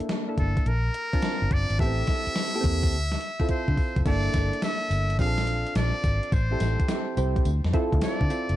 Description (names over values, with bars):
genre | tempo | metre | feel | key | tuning
R&B, new jack swing | 106 BPM | 4/4 | swing 67% on 16ths | G dorian | A4 = 437 Hz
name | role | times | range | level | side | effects
soft electric-piano-like synth keys | accompaniment | 0.0-8.6 s | Bb3 to A5 | -31 LUFS | right 2 dB | chorus
vintage muted fingered electric bass | bass | 0.0-8.6 s | F#1 to D3 | -26 LUFS | equal | none
gated 80s digital drum machine | drums | 0.0-8.6 s | crash cymbal, hi-hat, kick drum, snare drum, tambourine | -27 LUFS | equal | gated reverb, gated reverb snare, overdrive, vintage 12-bit sampler grit
trumpet with metal mute | melody | 0.4-8.6 s | A4 to F5 | -30 LUFS | equal | none
room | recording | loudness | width
little or no reverb | dark, warm production | -23 LUFS | side -14 dB against mid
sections
0.0-4.1 A section; 4.1-8.6 B section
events
drum fill 3.5-4.1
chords
0.0 Gm69; 0.7 Bbmaj7; 1.8 Am7; 2.9 Dm9; 4.1 Gm69; 5.2 Bbmaj7; 6.3 Am7; 7.5 Dm9